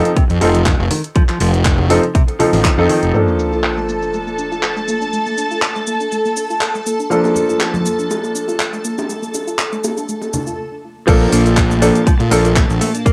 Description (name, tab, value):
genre	nu-disco, nu disco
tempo	121 BPM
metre	4/4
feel	swing 54% on 16ths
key	Bb major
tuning	A4 = 437 Hz
part	warm concert grand piano	accompaniment	0.0-12.5 s	F3 to A4	-20 LUFS	equal	tape echo
part	house drum kit	drums	0.1-13.1 s	cabasa, crash cymbal, handclaps, hi-hat	-25 LUFS	equal	low-pass filter on hats, cassette tape, low-pass filter on snare, low-pass filter on perc, low-pass filter on cymbals, low-pass filter on room
part	direct-recorded clean electric guitar	riff	0.2-3.0, 11.1-13.1 s	C3 to D4	-25 LUFS	equal	lush chorus, tape echo
part	fuzz fingered electric bass	bass	0.2-3.1, 11.1-12.8 s	F1 to Bb2	-18 LUFS	equal	overdrive, sidechain pumping
part	electronic kick drum	drums	0.2-2.8, 11.1-13.1 s	none	-16 LUFS	equal	cassette tape
part	congas and bongos	percussion	1.4-2.5, 7.2-10.4 s	none	-27 LUFS	equal	none
part	string machine, full ensemble	sustained chords	3.1-13.1 s	Bb3 to A5	-24 LUFS	equal	ensemble chorus, sidechain pumping
part	soft round pluck	arpeggios	3.1-13.1 s	A3 to A4	-28 LUFS	equal	chorus, cassette tape, sidechain pumping, tape echo
part	sub drop	sound effects	3.1-5.1 s	none	-25 LUFS	equal	none
room	moderate booth ambience, RT60 0.2 s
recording	home recording on cassette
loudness	-16 LUFS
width	mono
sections	0.0-3.1 A section; 3.1-11.1 B section; 11.1-13.1 C section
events	band accent 2.6; impact 3.1-5.1; break 10.6-11.1; drop 11.1-13.1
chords	0.0 F7; 3.1 Bbmaj7